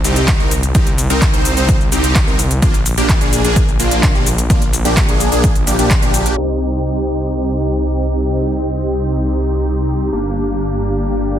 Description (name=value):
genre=EDM, festival progressive house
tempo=128 BPM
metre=4/4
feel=straight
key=C minor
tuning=A4 = 440 Hz
part: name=supersaw chords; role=riff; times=0.0-11.4 s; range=Bb3 to C5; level=-18 LUFS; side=equal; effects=sidechain pumping, low-pass filter, dub echo
part: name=detuned saw bass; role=bass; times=0.0-11.4 s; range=G1 to C2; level=-18 LUFS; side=equal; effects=sidechain pumping
part: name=big-room dance drum kit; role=drums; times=0.0-6.4 s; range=handclaps, hi-hat, shaker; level=-20 LUFS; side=equal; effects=overdrive, low-pass filter on hats, low-pass filter on perc, low-pass filter on snare, low-pass filter on room
part: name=electronic kick drum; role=drums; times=0.3-6.0 s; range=none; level=-15 LUFS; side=equal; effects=overdrive
room=light reverb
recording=dense, heavily limited modern master, low-pass filter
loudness=-13 LUFS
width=side -10 dB against mid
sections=0.0-6.4 A section; 6.4-11.4 B section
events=drop 0.0-6.4; filter sweep on supersaw synth 6.4-11.4; filter sweep 6.4-11.4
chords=0.0 Cm; 2.6 Bb; 6.4 Cm; 10.1 Gm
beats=0.28 | 0.75 1.22 1.69 2.16 | 2.62 3.09 3.56 4.03 | 4.50 4.97 5.44 5.91 | 6.38 6.84 7.31 7.78 | 8.25 8.72 9.19 9.66 | 10.12 10.59 11.06